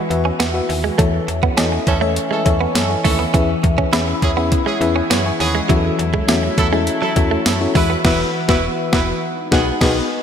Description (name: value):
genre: 1980s-style pop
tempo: 102 BPM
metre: 4/4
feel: straight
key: E major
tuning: A4 = 440 Hz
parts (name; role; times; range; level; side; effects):
- FM electric piano with tremolo; accompaniment; 0.0-10.2 s; E3 to C#6; -21 LUFS; left 4 dB; none
- sweeping resonant pad; sustained chords; 0.0-10.2 s; E3 to F#4; -25 LUFS; equal; chorus, phaser
- direct-recorded clean electric guitar; riff; 0.0-8.0 s; F#3 to E4; -24 LUFS; right 6 dB; analog chorus, ping-pong delay
- slap-like FM bass; bass; 0.1-10.0 s; E1 to F#2; -22 LUFS; equal; none
- clean 12-bit digital drum machine; drums; 0.1-10.0 s; crash cymbal, hi-hat, kick drum, snare drum, tambourine; -19 LUFS; equal; overdrive, gated reverb
- warm horn section; stabs; 1.9-10.0 s; D#3 to B4; -24 LUFS; right 3 dB; none
room: moderate lush hall reverb, RT60 2.8 s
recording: bright 1980s-style digital production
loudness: -15 LUFS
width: side -8 dB against mid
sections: 0.0-10.2 A section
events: FM electric piano fill 0.0-1.0; band accent 8.0-10.2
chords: 0.0 Esus2; 1.0 A/E; 3.3 C#m7/E; 5.7 F#m7/E; 7.8 Esus2; 9.2 B6